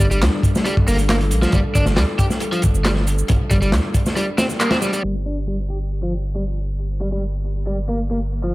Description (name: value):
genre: breakbeat, breaks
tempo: 137 BPM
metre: 4/4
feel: straight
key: G minor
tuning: A4 = 440 Hz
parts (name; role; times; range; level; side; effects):
- dark analog pad; sustained chords; 0.0-8.5 s; G3 to Bb4; -29 LUFS; left 1 dB; chorus, sidechain pumping
- overdriven electric guitar; riff; 0.0-8.5 s; F3 to G4; -24 LUFS; equal; vintage 12-bit sampler grit, low-pass filter, tape echo
- saturated sub bass; bass; 0.0-8.5 s; G1 to D2; -21 LUFS; equal; none
- crunchy breakbeat drum kit; drums; 0.0-5.0 s; hi-hat, kick drum, snare drum; -19 LUFS; equal; tape echo
- electronic shaker and handclaps; drums; 0.0-8.5 s; none; -27 LUFS; right 1 dB; overdrive, low-pass filter on perc, low-pass filter on snare
room: light reverb, small room ambience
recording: echo-heavy mix, low-pass filter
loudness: -17 LUFS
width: side -19 dB against mid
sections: 0.0-5.0 A section; 5.0-8.5 B section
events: band accent 4.6; filter sweep on overdriven electric guitar 5.0-8.5; filter sweep 5.0-8.5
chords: 0.0 G5; 5.0 Gm